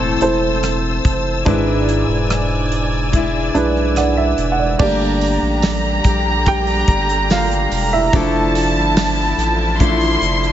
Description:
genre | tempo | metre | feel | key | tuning
pop ballad | 72 BPM | 4/4 | straight | unclear | A4 = 440 Hz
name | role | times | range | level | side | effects
dark upright piano | accompaniment | 0.0-10.5 s | G#2 to G5 | -19 LUFS | right 3 dB | none
rich studio string section | sustained chords | 0.0-10.5 s | D3 to E6 | -24 LUFS | left 1 dB | none
fingerpicked steel-string acoustic guitar | arpeggios | 0.0-10.5 s | A2 to B4 | -23 LUFS | left 4 dB | none
saturated sub bass | bass | 0.0-10.5 s | E1 to B1 | -21 LUFS | equal | none
modern studio drum kit | drums | 0.2-10.5 s | crash cymbal, hi-hat, kick drum, rim click, snare drum | -20 LUFS | equal | none
warm studio violin section | second line | 4.8-10.5 s | A5 to C6 | -20 LUFS | right 1 dB | none
tambourine | percussion | 4.8-9.6 s | none | -35 LUFS | right 10 dB | none
room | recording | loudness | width
light reverb, small room ambience | nothing above 7.7 kHz | -14 LUFS | side -11 dB against mid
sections
0.0-4.8 A section; 4.8-10.5 B section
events
upright piano fill 3.5-4.8; upright piano solo 4.8-10.5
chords
0.0 Am; 1.5 E7; 4.8 Gmadd9; 8.1 Dmadd9/F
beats
0.63 | 1.47 2.30 3.13 3.96 | 4.80 5.63 6.46 7.30 | 8.13 8.96 9.80

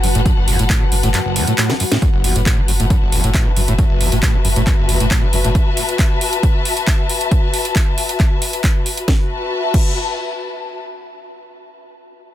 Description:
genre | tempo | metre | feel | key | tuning
driving peak-time techno | 136 BPM | 4/4 | straight | F# minor | A4 = 441 Hz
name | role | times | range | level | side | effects
screaming distorted acid line | riff | 0.0-5.5 s | F#1 to F#3 | -20 LUFS | equal | distortion, lush chorus, sidechain pumping, ping-pong delay
saturated sub bass | bass | 0.0-5.5 s | F#1 | -18 LUFS | equal | tube saturation, sidechain pumping, low-pass filter
deep dark ambient pad | drone | 0.0-2.1 s | F#3 to F#4 | -29 LUFS | equal | chorus, built-in reverb, sidechain pumping
techno drum kit | drums | 0.0-9.8 s | crash cymbal, handclaps, hi-hat, snare drum | -21 LUFS | right 1 dB | sidechain pumping on hats, sidechain pumping on cymbals
dark studio string section | texture | 0.0-10.8 s | F#4 to A5 | -22 LUFS | left 5 dB | sidechain pumping
electronic kick drum | drums | 0.3-9.8 s | none | -16 LUFS | equal | none
room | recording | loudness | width
little or no reverb | dense, heavily limited modern master | -14 LUFS | side -13 dB against mid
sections
0.0-2.0 A section; 2.0-9.1 B section; 9.1-10.8 C section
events
drop 0.0-2.0; drum fill 1.7-2.0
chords
0.0 F#m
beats
| 0.26 0.70 1.14 1.58 | 2.02 2.46 2.90 3.34 | 3.79 4.23 4.67 5.11 | 5.55 5.99 6.43 6.87 | 7.32 7.76 8.20 8.64 | 9.08 9.52 9.96 10.40

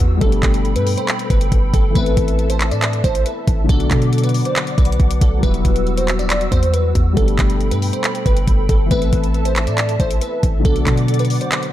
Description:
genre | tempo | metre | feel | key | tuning
hip hop, trap | 138 BPM | 4/4 | half-time | unclear | A4 = 439 Hz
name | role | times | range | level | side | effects
dark concert grand piano | accompaniment | 0.0-11.7 s | B2 to A4 | -23 LUFS | left 5 dB | none
hollow soft pad | sustained chords | 0.0-11.7 s | F#4 to E6 | -28 LUFS | right 1 dB | ensemble chorus
warm 808-style bass | bass | 0.0-11.4 s | E1 to B2 | -18 LUFS | equal | none
trap drum kit | drums | 0.0-11.7 s | handclaps, hi-hat, kick drum | -18 LUFS | equal | none
downlifter | sound effects | 0.0-2.0 s | none | -43 LUFS | left 1 dB | none
glassy digital keys | melody | 0.2-11.7 s | A4 to D5 | -24 LUFS | right 1 dB | chorus, digital delay
room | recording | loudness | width
digital ambience | dark, warm production | -14 LUFS | side -13 dB against mid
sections
0.0-11.7 A section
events
none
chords
0.2 Gadd9; 2.0 Am; 3.7 Bm; 5.4 Emadd9; 7.2 Gadd9; 8.9 Am; 10.6 Bm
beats
| 0.21 0.65 1.08 1.52 | 1.95 2.39 2.82 3.26 | 3.69 4.13 4.56 5.00 | 5.43 5.87 6.30 6.74 | 7.17 7.61 8.04 8.47 | 8.91 9.34 9.78 10.21 | 10.65 11.08 11.52

